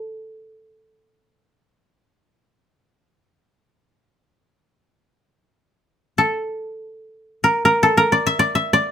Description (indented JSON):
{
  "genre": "japanese traditional, Japanese chamber music",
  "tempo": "free time",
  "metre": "none",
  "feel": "none",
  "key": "unclear",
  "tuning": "A4 = 439 Hz",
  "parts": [
    { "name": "koto", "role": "solo", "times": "0.0-8.9 s", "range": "A4 to E5", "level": "-16 LUFS", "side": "equal", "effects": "none" }
  ],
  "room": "light reverb",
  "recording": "none",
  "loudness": "-16 LUFS",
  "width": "side -9 dB against mid",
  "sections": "0.0-8.9 A section",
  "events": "none",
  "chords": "none",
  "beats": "free time"
}